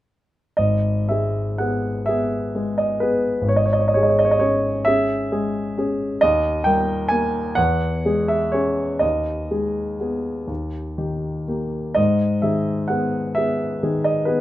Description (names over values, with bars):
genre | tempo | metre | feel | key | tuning
classical, romantic nocturne for solo piano | 40-45 BPM (dotted quarters) | 6/8 | rubato | G# minor | A4 = 439 Hz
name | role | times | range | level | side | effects
warm grand piano | solo | 0.6-14.4 s | G#1 to G#5 | -18 LUFS | equal | none
room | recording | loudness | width
light reverb | none | -19 LUFS | side -14 dB against mid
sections
0.6-14.4 A section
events
none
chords
0.6 G#m; 3.5 C#m/G#; 6.2 D#; 7.6 C#m/E; 9.0 G#m/D#; 10.5 D#; 12.0 G#m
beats
| 0.58 2.06 | 3.47 4.86 | 6.22 7.57 | 9.02 10.49 | 11.97 13.38